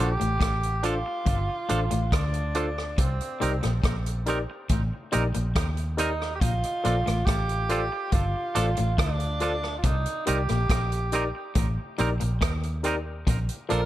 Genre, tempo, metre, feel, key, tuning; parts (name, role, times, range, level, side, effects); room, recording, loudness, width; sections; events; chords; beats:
lovers rock reggae; 70 BPM; 4/4; straight; Bb major; A4 = 441 Hz
warm tenor saxophone; melody; 0.0-13.9 s; C4 to Bb4; -31 LUFS; right 2 dB; tape echo
barky tine electric piano; accompaniment; 0.0-13.8 s; D4 to D5; -32 LUFS; left 2 dB; overdrive
twangy electric guitar; riff; 0.0-13.8 s; G2 to Eb3; -36 LUFS; left 6 dB
twangy electric guitar; stabs; 0.0-13.8 s; C4 to Bb4; -34 LUFS; right 5 dB; tape echo
vintage muted fingered electric bass; bass; 0.0-13.9 s; G1 to Eb2; -27 LUFS; equal
vintage drum kit; drums; 0.2-13.9 s; hi-hat, kick drum, rim click; -28 LUFS; equal; gated reverb
light reverb, small room reverb; -24 LUFS; side -14 dB against mid
0.0-13.9 A section
0.0 Bbmaj7 (rootless); 3.0 Cm7; 6.4 Bbmaj7; 9.8 Cm7; 13.3 Bbmaj7
0.41 1.27 2.13 | 2.98 3.84 4.70 5.56 | 6.42 7.27 8.13 8.99 | 9.84 10.70 11.56 12.41 | 13.27